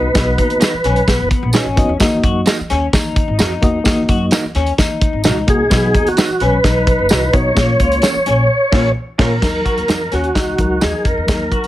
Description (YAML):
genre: uptempo 1960s-style soul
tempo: 129 BPM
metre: 4/4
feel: straight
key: Eb minor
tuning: A4 = 440 Hz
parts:
  - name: tonewheel organ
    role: melody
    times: 0.0-1.3, 5.5-11.7 s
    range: F#4 to Db5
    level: -17 LUFS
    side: equal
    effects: chorus vibrato, stopped rotary speaker
  - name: reed electric piano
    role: accompaniment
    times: 0.0-11.7 s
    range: F3 to D#5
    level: -20 LUFS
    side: left 2 dB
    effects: fast tremolo
  - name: electric guitar through a small old amp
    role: riff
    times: 0.0-11.7 s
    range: Bb3 to Gb4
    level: -22 LUFS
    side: left 5 dB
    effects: analog chorus
  - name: upright bass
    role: bass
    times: 0.0-11.7 s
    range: F#1 to Gb2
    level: -20 LUFS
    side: equal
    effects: none
  - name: tambourine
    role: percussion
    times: 0.1-11.4 s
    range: none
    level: -27 LUFS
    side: right 3 dB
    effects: none
  - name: warm soul drum kit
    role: drums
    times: 0.2-11.7 s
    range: crash cymbal, hi-hat, kick drum, snare drum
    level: -16 LUFS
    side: equal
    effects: none
  - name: electric guitar through a small old amp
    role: stabs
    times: 0.6-10.9 s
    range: Db4 to D#5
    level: -22 LUFS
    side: right 6 dB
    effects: analog chorus
room: light reverb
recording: heavily compressed radio sound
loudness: -12 LUFS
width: side -14 dB against mid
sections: 0.0-9.4 A section; 9.4-11.7 B section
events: band accent 8.5-9.4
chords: 0.0 B; 2.0 Ebm; 5.7 B; 7.6 Bbm; 9.4 Ebm